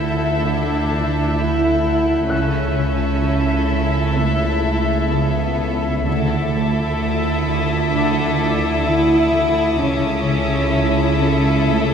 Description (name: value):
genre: cinematic, suspense film score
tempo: 64 BPM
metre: 4/4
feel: straight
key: unclear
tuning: A4 = 442 Hz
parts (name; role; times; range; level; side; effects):
- warm chamber violin section; melody; 0.0-11.9 s; E5; -26 LUFS; left 2 dB; none
- warm chamber violin section; second line; 0.0-11.9 s; A4; -28 LUFS; left 3 dB; none
- warm chamber viola section; accompaniment; 0.0-11.9 s; E4; -25 LUFS; equal; none
- concert harp; riff; 0.0-11.9 s; C#3 to D3; -25 LUFS; left 3 dB; none
- dark chamber double bass section; bass; 0.0-11.9 s; C#2 to D2; -24 LUFS; right 5 dB; none
- warm chamber cello section; bass; 0.0-11.9 s; A3 to E4; -21 LUFS; right 1 dB; none
- saturated sub bass; drone; 0.0-11.9 s; C#2 to D2; -24 LUFS; equal; none
- felt-muted upright piano; texture; 0.0-6.1 s; F#6; -33 LUFS; left 2 dB; none
- warm chamber violin section; texture; 0.0-11.9 s; D6 to G6; -34 LUFS; left 4 dB; none
room: wet scoring stage reverb, RT60 2.0 s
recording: heard from further back in the room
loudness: -16 LUFS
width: side -7 dB against mid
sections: 0.0-11.9 A section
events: none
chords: 0.0 Dsus2; 2.3 A/C#; 6.1 Dsus2; 9.8 A/C#